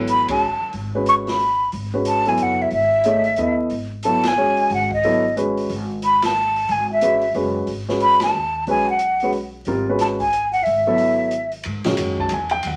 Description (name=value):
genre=modal jazz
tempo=181 BPM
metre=3/4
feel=swing 62% on 8ths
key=G# phrygian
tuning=A4 = 440 Hz
part: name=warm baby grand piano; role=accompaniment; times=0.0-12.8 s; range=D#3 to A5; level=-24 LUFS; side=equal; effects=none
part: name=upright bass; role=bass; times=0.0-12.8 s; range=F#1 to G#2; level=-33 LUFS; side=equal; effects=none
part: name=breathy mellow silver concert flute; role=melody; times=0.1-11.5 s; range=D#5 to C#6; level=-20 LUFS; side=equal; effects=none
part: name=open jazz drum kit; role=drums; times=0.1-12.7 s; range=hi-hat, kick drum, ride cymbal, snare drum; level=-34 LUFS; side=equal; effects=none
room=wet studio reverb, RT60 0.6 s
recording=vinyl crackle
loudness=-20 LUFS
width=mono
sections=0.0-11.7 A section; 11.7-12.8 B section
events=band accent 0.2, 4.2, 6.2, 8.2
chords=0.0 G#m7; 1.7 Aadd9; 3.7 G#m7; 5.7 Aadd9/G#; 7.7 G#m7; 9.7 Aadd9/G#; 11.7 G#7(no3)